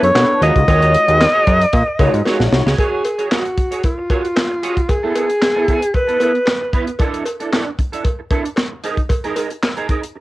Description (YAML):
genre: early-eighties boogie funk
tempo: 114 BPM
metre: 4/4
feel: straight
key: unclear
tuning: A4 = 441 Hz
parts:
  - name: breathy alto saxophone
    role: melody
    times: 0.0-6.7 s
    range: F4 to Eb5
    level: -16 LUFS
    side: equal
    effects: cassette tape
  - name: mellow synth brass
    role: accompaniment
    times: 0.0-2.7 s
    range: Ab3 to Db5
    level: -20 LUFS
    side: left 1 dB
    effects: chorus, phaser, cassette tape
  - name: electric guitar at the edge of break-up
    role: riff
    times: 0.0-10.2 s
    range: B3 to Eb5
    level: -23 LUFS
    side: right 4 dB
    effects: ensemble chorus, cassette tape
  - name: fat analog bass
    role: bass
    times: 0.0-2.7 s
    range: Bb1 to B2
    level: -15 LUFS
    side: equal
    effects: none
  - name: tight funk drum kit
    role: drums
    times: 0.0-10.1 s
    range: handclaps, hi-hat, kick drum, snare drum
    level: -18 LUFS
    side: equal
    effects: cassette tape
  - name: cowbell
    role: percussion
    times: 0.1-9.8 s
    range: none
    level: -26 LUFS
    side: right 1 dB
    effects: none
room: light reverb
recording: home recording on cassette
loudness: -14 LUFS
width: side -18 dB against mid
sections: 0.0-2.8 A section; 2.8-10.2 B section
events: drum fill 2.3-2.8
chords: 0.4 Ebm11; 2.8 Dbadd11; 4.9 Eadd11/B; 7.0 Dsus2; 8.8 Ebsus4